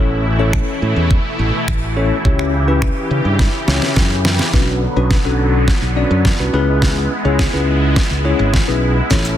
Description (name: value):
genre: dance-pop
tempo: 105 BPM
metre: 4/4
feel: straight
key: unclear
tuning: A4 = 439 Hz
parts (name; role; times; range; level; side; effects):
- bell-like tine electric piano; accompaniment; 0.0-9.4 s; C#4 to D5; -20 LUFS; left 3 dB; medium stereo tremolo, sidechain pumping
- filtered supersaw swell; sustained chords; 0.0-9.4 s; B2 to G4; -21 LUFS; right 1 dB; sidechain pumping
- modern bright fingered electric bass; bass; 0.0-9.4 s; G#1 to C#3; -17 LUFS; equal; sidechain pumping
- smooth R&B drum kit; drums; 0.5-9.4 s; finger snaps, hi-hat, kick drum, shaker, snare drum; -17 LUFS; equal; soft clipping on snare
room: light reverb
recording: dense, heavily limited modern master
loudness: -13 LUFS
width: side -11 dB against mid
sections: 0.0-4.5 A section; 4.5-9.4 B section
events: drum fill 3.4-4.5, 4.5-9.4; build-up 4.5-9.4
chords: 0.0 A; 2.2 C#dim; 4.5 Bmadd9; 6.5 C#m7